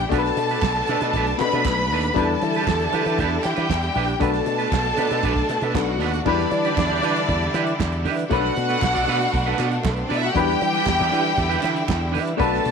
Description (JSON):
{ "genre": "disco", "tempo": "117 BPM", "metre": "4/4", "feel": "straight", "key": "E minor", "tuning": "A4 = 440 Hz", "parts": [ { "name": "rich studio violin section", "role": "second line", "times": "0.0-12.7 s", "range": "A3 to B5", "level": "-23 LUFS", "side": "equal", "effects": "none" }, { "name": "dark baby grand piano", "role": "accompaniment", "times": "0.0-12.7 s", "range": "F#3 to B4", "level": "-27 LUFS", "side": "left 12 dB", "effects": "none" }, { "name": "electric guitar at the edge of break-up", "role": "accompaniment", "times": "0.0-12.7 s", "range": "D4 to D5", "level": "-28 LUFS", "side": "right 15 dB", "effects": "none" }, { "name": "bright studio string section", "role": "sustained chords", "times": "0.0-12.7 s", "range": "B2 to E4", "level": "-30 LUFS", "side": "equal", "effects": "none" }, { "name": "slap bass with an envelope filter", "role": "bass", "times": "0.0-12.7 s", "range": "A#1 to E3", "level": "-26 LUFS", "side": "equal", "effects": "none" }, { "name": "damped 70s drum kit", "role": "drums", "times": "0.1-12.7 s", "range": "crash cymbal, hi-hat, kick drum, snare drum", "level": "-29 LUFS", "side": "right 3 dB", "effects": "none" }, { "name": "group handclap", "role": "percussion", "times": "0.6-12.0 s", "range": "none", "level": "-36 LUFS", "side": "right 15 dB", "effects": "none" } ], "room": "light reverb, studio reverb", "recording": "1960s-style stereo with parts hard left and right", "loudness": "-19 LUFS", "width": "side -6 dB against mid", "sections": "0.0-6.3 A section; 6.3-12.7 B section", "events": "none", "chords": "0.1 Bm7; 2.2 Em7; 4.2 Bm7; 6.3 Em7; 8.3 Bm7; 10.4 Em7", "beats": "| 0.11 0.62 1.14 1.65 | 2.16 2.67 3.19 3.70 | 4.21 4.72 5.24 5.75 | 6.26 6.77 7.28 7.80 | 8.31 8.82 9.33 9.84 | 10.35 10.87 11.38 11.89 | 12.40" }